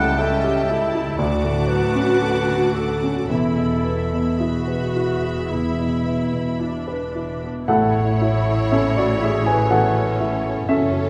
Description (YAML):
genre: classical, romantic movement for piano and orchestra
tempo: 54-62 BPM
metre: 4/4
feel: rubato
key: A major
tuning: A4 = 440 Hz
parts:
  - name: warm baby grand piano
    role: melody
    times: 0.0-11.1 s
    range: C#2 to G#5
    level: -23 LUFS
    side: equal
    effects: none
  - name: warm studio violin section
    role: melody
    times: 0.0-11.1 s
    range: A4 to D6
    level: -38 LUFS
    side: equal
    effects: none
  - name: dark clarinet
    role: second line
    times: 0.0-6.6 s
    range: G#4 to F#5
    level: -28 LUFS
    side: equal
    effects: none
  - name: warm studio violin section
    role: second line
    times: 0.0-11.1 s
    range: A4 to A5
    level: -34 LUFS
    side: equal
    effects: none
  - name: warm studio viola section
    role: accompaniment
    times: 0.0-11.1 s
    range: A3 to F#4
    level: -29 LUFS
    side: equal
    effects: none
  - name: clear studio cello section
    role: bass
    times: 0.0-11.1 s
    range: C#2 to A2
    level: -31 LUFS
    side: equal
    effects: none
  - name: warm studio double bass section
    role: bass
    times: 0.0-11.1 s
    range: E1 to D2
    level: -30 LUFS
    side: equal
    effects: none
  - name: timpani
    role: percussion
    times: 7.7-9.2 s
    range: A2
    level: -30 LUFS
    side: equal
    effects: none
room: wet scoring stage reverb, RT60 1.5 s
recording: none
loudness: -20 LUFS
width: mono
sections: 0.0-7.7 A section; 7.7-11.1 B section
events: none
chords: 0.0 A7/C#; 1.2 Dmaj7; 3.3 E; 7.7 A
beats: 0.18 1.19 2.22 | 3.30 4.39 5.50 6.60 | 7.68 8.71 9.71 10.69